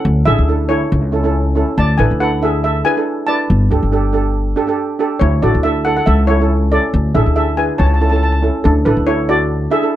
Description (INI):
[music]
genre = calypso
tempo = 140 BPM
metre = 4/4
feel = swing 53% on 16ths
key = unclear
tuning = A4 = 440 Hz
[part]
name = steel pan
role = melody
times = 0.0-10.0 s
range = D4 to A5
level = -17 LUFS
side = left 1 dB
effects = none
[part]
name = steel pan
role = accompaniment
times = 0.0-10.0 s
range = C#4 to B4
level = -18 LUFS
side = right 3 dB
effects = none
[part]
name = upright bass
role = bass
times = 0.1-9.7 s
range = G1 to D2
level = -15 LUFS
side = equal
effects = none
[sound]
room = little or no reverb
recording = dry, close 1970s-style studio recording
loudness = -12 LUFS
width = side -12 dB against mid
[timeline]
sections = 0.0-8.6 A section; 8.6-10.0 A section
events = none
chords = 0.1 Dsus2; 0.9 A/C#; 1.8 Dsus2; 3.5 Gsus2; 5.2 Dsus2; 6.1 A/C#; 6.9 Dsus2; 7.8 A/C#; 8.6 Dsus2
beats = | 0.06 0.49 0.92 1.35 | 1.78 2.21 2.64 3.07 | 3.50 3.93 4.36 4.79 | 5.22 5.65 6.08 6.50 | 6.93 7.36 7.79 8.21 | 8.64 9.07 9.49 9.92